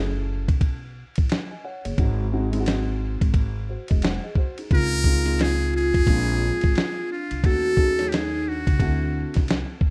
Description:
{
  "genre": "hip hop, jazz-hop",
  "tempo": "88 BPM",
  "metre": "4/4",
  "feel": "swing 60% on 16ths",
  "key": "unclear",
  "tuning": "A4 = 441 Hz",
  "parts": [
    { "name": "dark concert grand piano", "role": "accompaniment", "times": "0.0-9.9 s", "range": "D#3 to G#5", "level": "-34 LUFS", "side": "equal", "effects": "none" },
    { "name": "upright bass", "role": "bass", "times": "0.0-9.6 s", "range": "E1 to E#2", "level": "-29 LUFS", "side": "equal", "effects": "none" },
    { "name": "dusty soul sampler-style drum kit", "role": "drums", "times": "0.5-9.9 s", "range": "hi-hat, kick drum, ride cymbal, snare drum", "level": "-24 LUFS", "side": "equal", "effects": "none" },
    { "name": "trumpet with metal mute", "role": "melody", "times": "4.7-9.5 s", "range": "E#4 to A#4", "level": "-31 LUFS", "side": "equal", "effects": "none" },
    { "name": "vibraphone with soft mallets", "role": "second line", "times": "4.7-9.5 s", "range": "D4 to F#4", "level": "-28 LUFS", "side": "equal", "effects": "none" }
  ],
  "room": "small room ambience",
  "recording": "rough home demo mix",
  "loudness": "-23 LUFS",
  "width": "mono",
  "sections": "0.0-9.9 A section",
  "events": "none",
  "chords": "0.0 F#m9; 2.0 G#7; 4.7 C#maj7; 6.1 A#7; 7.4 D#m7b5; 8.8 D9"
}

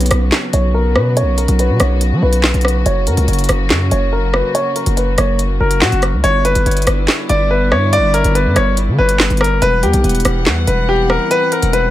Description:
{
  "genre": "hip hop, drill",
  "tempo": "142 BPM",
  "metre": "4/4",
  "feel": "half-time",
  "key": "B harmonic minor",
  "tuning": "A4 = 440 Hz",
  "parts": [
    { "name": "clear concert grand piano", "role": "melody", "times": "0.0-11.9 s", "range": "F#4 to D5", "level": "-17 LUFS", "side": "left 1 dB", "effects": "low-pass filter, analog delay" },
    { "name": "warm studio string section", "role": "sustained chords", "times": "0.0-11.9 s", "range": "C#3 to F#5", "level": "-22 LUFS", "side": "left 1 dB", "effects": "none" },
    { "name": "distorted 808-style bass", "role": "bass", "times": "0.0-11.9 s", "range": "E1 to F#3", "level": "-15 LUFS", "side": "equal", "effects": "distortion" },
    { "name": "drill drum kit", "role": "drums", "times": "0.0-11.8 s", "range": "handclaps, hi-hat, rim click, snare drum", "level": "-18 LUFS", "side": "equal", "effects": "none" },
    { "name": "swell", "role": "sound effects", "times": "10.8-11.9 s", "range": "none", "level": "-28 LUFS", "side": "right 2 dB", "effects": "none" }
  ],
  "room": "digital ambience",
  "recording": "echo-heavy mix",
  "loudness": "-12 LUFS",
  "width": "side -14 dB against mid",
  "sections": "0.0-11.9 A section",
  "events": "filter sweep on grand piano 0.0-6.2; swell 10.8-11.9",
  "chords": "0.0 Bsus2; 2.9 F#; 6.2 G6; 9.6 Emadd9"
}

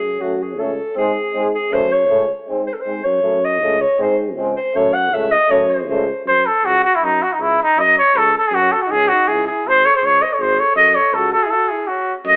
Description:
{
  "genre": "balkan folk",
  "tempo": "159 BPM",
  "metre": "2/4",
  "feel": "swing 55% on 16ths",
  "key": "F# dorian sharp4",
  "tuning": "A4 = 441 Hz",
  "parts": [
    { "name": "warm alto saxophone", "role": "second line", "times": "0.0-6.2, 8.6-12.2 s", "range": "C#4 to F#5", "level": "-18 LUFS", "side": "equal", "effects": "none" },
    { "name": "mellow tuba", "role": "bass", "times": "0.0-12.4 s", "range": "G#1 to G#2", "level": "-25 LUFS", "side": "equal", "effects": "none" },
    { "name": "warm French horn", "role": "accompaniment", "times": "0.2-6.0, 12.2-12.4 s", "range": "B#3 to F#4", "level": "-25 LUFS", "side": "equal", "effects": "none" },
    { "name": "warm euphonium", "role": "accompaniment", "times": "0.2-6.0, 12.2-12.4 s", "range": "G#3 to A3", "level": "-24 LUFS", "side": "equal", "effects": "none" },
    { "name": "dark trumpet", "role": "melody", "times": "6.3-12.4 s", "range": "D#4 to D#5", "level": "-12 LUFS", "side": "equal", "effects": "none" }
  ],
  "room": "moderate stone room reverb, RT60 1.2 s",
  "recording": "band playing live in one room, telephone sound",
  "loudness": "-13 LUFS",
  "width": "side -37 dB against mid",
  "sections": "0.0-6.3 A section; 6.3-12.2 B section",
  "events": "alto saxophone solo 0.0-6.3; break 11.5-12.2",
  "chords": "0.0 F#m; 1.0 G#; 1.7 F#m; 2.5 G#; 3.2 F#m; 4.0 G#; 4.7 F#m; 6.3 F#5; 9.3 C#5; 10.8 F#5"
}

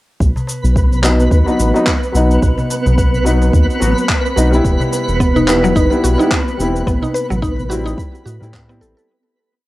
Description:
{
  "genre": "organic downtempo",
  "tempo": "108 BPM",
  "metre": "4/4",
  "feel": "swing 57% on 16ths",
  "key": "B phrygian dominant",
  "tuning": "A4 = 440 Hz",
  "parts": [
    { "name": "round analog bass", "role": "bass", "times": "0.2-8.9 s", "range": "E1 to A2", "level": "-15 LUFS", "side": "equal", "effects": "sidechain pumping" },
    { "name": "electronic cabasa and handclaps", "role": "drums", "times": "0.2-9.1 s", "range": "none", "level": "-22 LUFS", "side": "equal", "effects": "overdrive, cassette tape" },
    { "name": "electronic kick drum", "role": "drums", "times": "0.2-8.7 s", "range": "none", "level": "-17 LUFS", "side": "equal", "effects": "overdrive, cassette tape" },
    { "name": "twinkling granular texture", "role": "texture", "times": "0.5-9.1 s", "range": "B3 to B4", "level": "-20 LUFS", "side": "right 2 dB", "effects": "built-in reverb, cassette tape" },
    { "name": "darbuka", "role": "percussion", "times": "0.4-8.0 s", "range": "none", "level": "-25 LUFS", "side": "left 1 dB", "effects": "none" },
    { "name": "felt-muted upright piano", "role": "accompaniment", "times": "1.0-9.1 s", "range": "F#3 to F#4", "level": "-18 LUFS", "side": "left 1 dB", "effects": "sidechain pumping, cassette tape, tape echo" },
    { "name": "mallet-like synth pluck", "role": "arpeggios", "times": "5.2-9.1 s", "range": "F#3 to B4", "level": "-18 LUFS", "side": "equal", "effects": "chorus, cassette tape, tape echo" }
  ],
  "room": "moderate studio ambience, RT60 0.5 s",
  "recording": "home recording on cassette",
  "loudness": "-12 LUFS",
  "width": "side -17 dB against mid",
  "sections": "0.2-9.1 groove",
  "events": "fade-out 6.1-9.1",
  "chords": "0.2 B; 4.6 Em; 6.9 Am7"
}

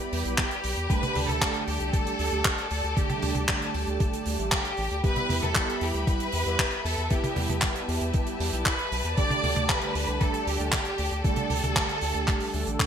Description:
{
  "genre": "italo disco",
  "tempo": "116 BPM",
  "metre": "4/4",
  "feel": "straight",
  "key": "unclear",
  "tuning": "A4 = 440 Hz",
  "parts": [
    { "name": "clear symphonic string section", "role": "sustained chords", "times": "0.0-12.9 s", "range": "G4 to B5", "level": "-35 LUFS", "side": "left 3 dB", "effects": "none" },
    { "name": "mellow synth brass", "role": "stabs", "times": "0.0-12.9 s", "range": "D3 to A4", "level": "-32 LUFS", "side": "right 3 dB", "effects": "chorus" },
    { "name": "round analog bass", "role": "bass", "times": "0.1-12.8 s", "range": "A1 to E2", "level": "-30 LUFS", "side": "equal", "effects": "tube saturation" },
    { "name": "damped 70s drum kit", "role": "drums", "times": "0.1-12.9 s", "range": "handclaps, hi-hat, toms", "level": "-29 LUFS", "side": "right 1 dB", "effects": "studio reverb, gated reverb" },
    { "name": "rich studio violin section", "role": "melody", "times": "0.4-12.9 s", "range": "G4 to D5", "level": "-31 LUFS", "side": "equal", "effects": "ping-pong delay" },
    { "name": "electronic kick drum", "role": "drums", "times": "0.4-12.9 s", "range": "none", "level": "-28 LUFS", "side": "equal", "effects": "overdrive, studio reverb" }
  ],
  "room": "moderate plate reverb, RT60 1.6 s, small room ambience",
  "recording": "bright 1980s-style digital production",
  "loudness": "-24 LUFS",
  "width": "side -8 dB against mid",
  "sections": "0.0-12.9 A section",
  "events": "none",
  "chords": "0.0 Em; 0.9 Dsus4; 5.0 Em; 9.2 Dsus4"
}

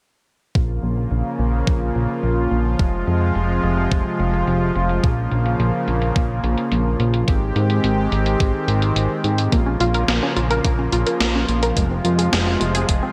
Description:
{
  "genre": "synthwave",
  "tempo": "107 BPM",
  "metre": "4/4",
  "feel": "straight",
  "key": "Bb dorian",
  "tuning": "A4 = 442 Hz",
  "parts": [
    { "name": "soft supersaw", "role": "sustained chords", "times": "0.5-13.1 s", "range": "C3 to G4", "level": "-24 LUFS", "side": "equal", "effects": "sidechain pumping" },
    { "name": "fat analog bass", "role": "bass", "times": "0.6-13.0 s", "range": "F1 to Ab2", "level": "-23 LUFS", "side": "equal", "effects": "sidechain pumping" },
    { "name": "electronic kick drum", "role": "drums", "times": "0.6-13.0 s", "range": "none", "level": "-21 LUFS", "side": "equal", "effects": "none" },
    { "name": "gated 80s digital drum machine", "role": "drums", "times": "0.6-13.0 s", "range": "hi-hat, snare drum", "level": "-28 LUFS", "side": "equal", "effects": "gated reverb, gated reverb snare, low-pass filter on hats, low-pass filter on snare, low-pass filter on room" },
    { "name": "unison pluck", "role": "arpeggios", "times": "9.5-13.1 s", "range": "Ab3 to Bb4", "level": "-26 LUFS", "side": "equal", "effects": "cassette tape, delay" }
  ],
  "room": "moderate lush hall reverb, RT60 2.1 s",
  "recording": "bright 1980s-style digital production",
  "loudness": "-20 LUFS",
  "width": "mono",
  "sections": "0.6-13.1 A section",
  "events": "filter sweep on drum 0.6-13.1; filter sweep on analog synth bass 0.6-13.1",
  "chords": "0.6 Bbm; 2.8 Fm; 5.0 Bbm; 7.3 Abmaj7; 9.5 Bbm; 11.8 Fm"
}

